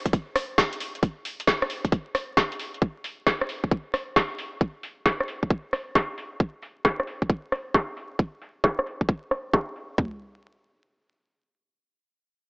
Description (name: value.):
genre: UK garage.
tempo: 134 BPM.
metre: 4/4.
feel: swing 66% on 16ths.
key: none.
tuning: none.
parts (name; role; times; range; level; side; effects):
garage drum kit; drums; 0.1-10.1 s; kick drum, toms; -23 LUFS; equal; none.
garage drum kit; drums; 0.1-9.9 s; hi-hat, rim click, snare drum; -24 LUFS; equal; overdrive, low-pass filter on hats, low-pass filter on snare.
room: light reverb, digital ambience.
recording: vinyl crackle, small speaker sound.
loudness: -24 LUFS.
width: side -34 dB against mid.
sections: 0.0-10.0 A section; 10.0-12.5 B section.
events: filter sweep on drum 0.0-10.0.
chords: none.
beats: 0.13 0.58 | 1.03 1.47 1.92 2.37 | 2.82 3.27 3.71 4.16 | 4.61 5.06 5.50 5.95 | 6.40 6.85 7.29 7.74 | 8.19 8.64 9.09 9.53 | 9.98.